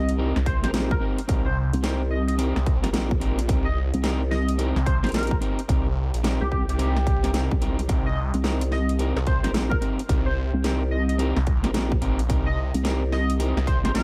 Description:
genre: glitch hop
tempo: 109 BPM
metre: 4/4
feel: swing 63% on 16ths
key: C minor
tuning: A4 = 442 Hz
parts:
  - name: sync lead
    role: melody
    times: 0.0-14.0 s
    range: G4 to Eb5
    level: -35 LUFS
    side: equal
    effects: subtle chorus, digital delay
  - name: vowel-sweep wobble bass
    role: bass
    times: 0.0-14.0 s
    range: Bb1 to C2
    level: -26 LUFS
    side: equal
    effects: chorus
  - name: impact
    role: sound effects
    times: 0.0-1.3 s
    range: none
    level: barely audible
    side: none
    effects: none
  - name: dubstep drum kit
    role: drums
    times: 0.1-14.0 s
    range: hi-hat, snare drum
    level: -33 LUFS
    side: equal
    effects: none
  - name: electric guitar at the edge of break-up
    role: stabs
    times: 0.2-14.0 s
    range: C4 to Bb4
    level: -32 LUFS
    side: equal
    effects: vintage 12-bit sampler grit, sidechain pumping
  - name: phased detuned saw bass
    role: bass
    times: 0.4-13.8 s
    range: Bb1 to C2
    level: -27 LUFS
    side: equal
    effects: phaser
  - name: electronic kick drum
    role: drums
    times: 0.5-13.8 s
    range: none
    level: -27 LUFS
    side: equal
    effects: none
room: digital ambience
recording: none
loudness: -24 LUFS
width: mono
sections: 0.0-14.0 A section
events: impact 0.0-1.3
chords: 0.0 Cm7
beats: 0.18 0.73 | 1.29 1.84 2.39 2.94 | 3.49 4.04 4.59 5.14 | 5.69 6.24 6.79 7.34 | 7.89 8.44 8.99 9.54 | 10.09 10.64 11.19 11.74 | 12.29 12.85 13.40 13.95

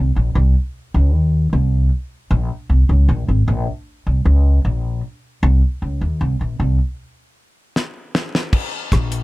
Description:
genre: dub reggae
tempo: 77 BPM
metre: 4/4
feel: straight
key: unclear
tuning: A4 = 440 Hz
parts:
  - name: upright bass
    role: bass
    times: 0.0-9.2 s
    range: Ab1 to Eb2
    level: -14 LUFS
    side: equal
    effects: none
  - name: damped 70s drum kit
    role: drums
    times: 7.8-9.2 s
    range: crash cymbal, hi-hat, kick drum, rim click, snare drum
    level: -18 LUFS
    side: left 1 dB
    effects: none
room: little or no reverb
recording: none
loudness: -16 LUFS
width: side -20 dB against mid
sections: 0.0-8.5 A section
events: break 7.0-8.5; drum fill 7.8-8.5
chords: none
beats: 0.73 1.51 | 2.29 3.07 3.85 4.63 | 5.41 6.19 6.97 7.75 | 8.53

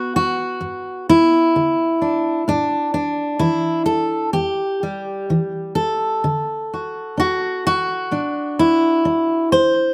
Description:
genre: folk, solo fingerstyle acoustic guitar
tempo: 64 BPM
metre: 4/4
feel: rubato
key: D mixolydian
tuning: A4 = 440 Hz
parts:
  - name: fingerpicked steel-string acoustic guitar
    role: solo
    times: 0.0-9.9 s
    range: E2 to C5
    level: -19 LUFS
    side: equal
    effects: slapback echo
room: little or no reverb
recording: recorded outdoors, with no room sound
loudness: -19 LUFS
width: mono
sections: 0.0-9.9 A section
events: none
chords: 0.0 G; 2.5 A5; 6.2 Dadd9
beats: 0.62 1.55 | 2.47 3.39 4.32 5.28 | 6.24 7.18 8.12 9.06

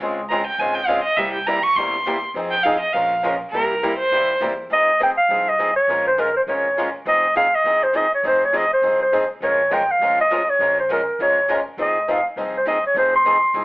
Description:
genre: acoustic string swing (jazz manouche)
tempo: 204 BPM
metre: 4/4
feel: swing 58% on 8ths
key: F minor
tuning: A4 = 442 Hz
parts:
  - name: picked steel-string acoustic guitar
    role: accompaniment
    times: 0.0-13.6 s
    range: C3 to Bb4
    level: -30 LUFS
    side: right 1 dB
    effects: none
  - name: picked swing-style acoustic guitar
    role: accompaniment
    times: 0.0-13.6 s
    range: C3 to Bb4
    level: -26 LUFS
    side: left 1 dB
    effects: none
  - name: upright bass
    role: bass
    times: 0.0-13.6 s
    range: F1 to F2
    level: -42 LUFS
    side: equal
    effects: none
  - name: bright violin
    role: second line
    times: 0.3-4.4 s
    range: Bb4 to Db6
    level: -19 LUFS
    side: right 1 dB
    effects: none
  - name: mellow clarinet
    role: melody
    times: 4.7-13.6 s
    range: Bb4 to C6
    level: -16 LUFS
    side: equal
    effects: none
room: moderate studio reverb, RT60 0.8 s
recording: telephone sound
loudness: -16 LUFS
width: side -23 dB against mid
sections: 0.0-4.7 A section; 4.7-13.6 B section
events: violin solo 0.0-4.7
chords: 0.0 Dbmaj7; 1.2 C7; 2.4 Fm7; 2.9 Bbm7; 3.5 C7#9; 4.7 Fm7; 5.9 Bbm7; 7.1 Fm7; 9.4 Bbm7; 11.8 Fm7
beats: | 0.01 0.30 0.59 0.89 | 1.18 1.47 1.77 2.06 | 2.35 2.65 2.94 3.24 | 3.53 3.82 4.12 4.41 | 4.71 5.00 5.29 5.59 | 5.88 6.18 6.47 6.77 | 7.06 7.36 7.65 7.95 | 8.24 8.54 8.83 9.13 | 9.42 9.71 10.01 10.30 | 10.60 10.89 11.19 11.48 | 11.78 12.07 12.37 12.66 | 12.96 13.25 13.54

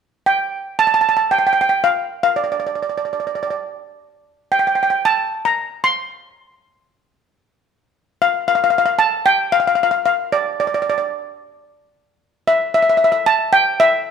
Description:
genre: calypso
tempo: 113 BPM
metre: 4/4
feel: straight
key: F major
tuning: A4 = 440 Hz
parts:
  - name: steel pan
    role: solo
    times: 0.3-14.1 s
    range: D5 to C6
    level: -15 LUFS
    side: equal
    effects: none
room: moderate recital hall reverb, RT60 1.3 s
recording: close, detailed microphones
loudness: -15 LUFS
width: side -6 dB against mid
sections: 0.0-8.2 A section; 8.2-14.1 B section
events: none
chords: none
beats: 0.26 0.79 1.32 | 1.85 2.38 2.91 3.44 | 3.97 4.50 5.04 5.57 | 6.10 6.63 7.16 7.69 | 8.22 8.75 9.28 9.81 | 10.34 10.87 11.40 11.93 | 12.46 12.99 13.52 14.05

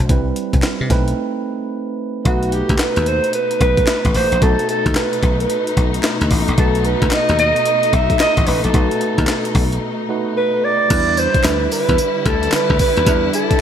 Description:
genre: R&B, new jack swing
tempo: 111 BPM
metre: 4/4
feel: swing 64% on 16ths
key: unclear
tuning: A4 = 440 Hz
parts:
  - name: bright tine electric piano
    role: accompaniment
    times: 0.0-13.6 s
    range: G3 to C5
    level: -24 LUFS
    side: right 5 dB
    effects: none
  - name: dry thumbed slap bass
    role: bass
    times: 0.0-13.5 s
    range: A1 to C3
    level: -19 LUFS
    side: left 1 dB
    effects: none
  - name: breakbeat sampler-style drum kit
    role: drums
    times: 0.1-13.6 s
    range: crash cymbal, handclaps, hi-hat, kick drum, snare drum, tambourine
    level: -19 LUFS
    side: left 1 dB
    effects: none
  - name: warm alto saxophone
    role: melody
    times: 2.3-13.6 s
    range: F#4 to E5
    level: -18 LUFS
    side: right 1 dB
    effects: none
  - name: warm studio string section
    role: sustained chords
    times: 2.3-13.6 s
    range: B2 to E4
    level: -24 LUFS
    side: left 4 dB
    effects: none
  - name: group handclap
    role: percussion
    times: 2.8-12.7 s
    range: none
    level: -34 LUFS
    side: left 4 dB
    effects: none
room: moderate lush hall reverb, RT60 2.3 s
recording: bright 1980s-style digital production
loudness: -14 LUFS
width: side -9 dB against mid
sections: 0.0-2.3 A section; 2.3-10.9 B section; 10.9-13.6 C section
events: break 1.2-2.3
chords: 0.1 Cmaj7; 0.9 B7b9; 2.3 B7; 10.9 Em7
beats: | 0.09 0.63 1.17 1.71 | 2.25 2.79 3.34 3.88 | 4.42 4.96 5.50 6.04 | 6.58 7.12 7.66 8.20 | 8.74 9.28 9.82 10.36 | 10.90 11.44 11.98 12.53 | 13.07 13.61

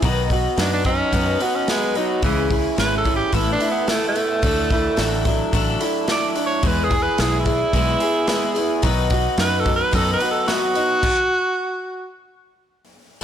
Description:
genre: folk rock and heartland rock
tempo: 109 BPM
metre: 4/4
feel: straight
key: unclear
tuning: A4 = 440 Hz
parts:
  - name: picked twelve-string acoustic guitar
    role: accompaniment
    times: 0.0-13.2 s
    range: B2 to B4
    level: -24 LUFS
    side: left 7 dB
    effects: none
  - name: electric guitar through a small old amp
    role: riff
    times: 0.0-11.0 s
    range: E2 to G#4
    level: -24 LUFS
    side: right 3 dB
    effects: none
  - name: fingered electric bass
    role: bass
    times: 0.0-10.2 s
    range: G#1 to F#2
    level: -24 LUFS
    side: equal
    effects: none
  - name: natural country drum kit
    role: drums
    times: 0.0-11.2 s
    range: crash cymbal, hi-hat, kick drum, snare drum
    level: -24 LUFS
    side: equal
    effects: none
  - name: clear tenor saxophone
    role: melody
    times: 0.6-12.1 s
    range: E3 to D5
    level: -22 LUFS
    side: right 2 dB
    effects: none
room: moderate echo chamber reverb, RT60 1.8 s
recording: blown-out, overdriven recording, overdrive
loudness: -17 LUFS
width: side -9 dB against mid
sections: 0.0-13.2 A section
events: tenor saxophone solo 0.0-13.2; stop 11.0-13.2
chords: 0.0 B; 2.2 C#m; 3.3 Asus2; 4.4 Dadd9; 6.6 E; 8.8 B; 11.0 N.C.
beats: | 0.04 0.59 1.14 1.69 | 2.24 2.79 3.34 3.89 | 4.44 4.99 5.54 6.09 | 6.64 7.19 7.74 8.29 | 8.84 9.39 9.94 10.49 | 11.04 11.58 12.13 12.68 | 13.23

